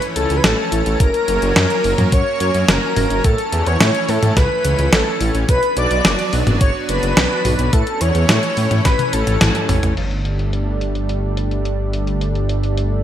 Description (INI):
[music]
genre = synthwave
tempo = 107 BPM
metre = 4/4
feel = straight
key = unclear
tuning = A4 = 441 Hz
[part]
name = lush unison pad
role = sustained chords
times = 0.0-13.0 s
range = E3 to D4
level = -23 LUFS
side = equal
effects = chorus, sidechain pumping
[part]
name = detuned 8-bit digital drum machine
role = drums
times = 0.0-12.9 s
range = crash cymbal, hi-hat, snare drum, toms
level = -18 LUFS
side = equal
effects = low-pass filter on snare, studio reverb, low-pass filter on hats, low-pass filter on toms, low-pass filter on cymbals, gated reverb
[part]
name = warm velvety synth lead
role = melody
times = 0.2-9.7 s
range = A4 to D5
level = -22 LUFS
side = equal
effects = chorus, digital delay
[part]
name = airy dreamy lead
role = second line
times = 0.2-9.7 s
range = A4 to D5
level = -24 LUFS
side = equal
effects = chorus, cassette tape, digital delay
[part]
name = dark detuned saw bass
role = bass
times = 0.2-13.0 s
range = F#1 to A2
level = -19 LUFS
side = equal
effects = sidechain pumping
[part]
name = electronic kick drum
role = drums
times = 1.0-9.0 s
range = none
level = -16 LUFS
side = equal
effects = studio reverb
[sound]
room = light reverb, digital ambience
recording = bright 1980s-style digital production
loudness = -14 LUFS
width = side -10 dB against mid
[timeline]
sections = 0.0-10.0 A section; 10.0-13.0 B section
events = drum fill 8.9-10.0; band accent 9.4; filter sweep on analog synth pad 10.0-13.0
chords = 0.0 A; 1.0 F#; 3.2 A; 5.5 Bm; 7.7 A; 10.0 Gsus2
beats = 0.44 | 1.00 1.56 2.12 2.68 | 3.24 3.81 4.37 4.93 | 5.49 6.05 6.61 7.17 | 7.73 8.29 8.85 9.41 | 9.97 10.53 11.09 11.65 | 12.22 12.78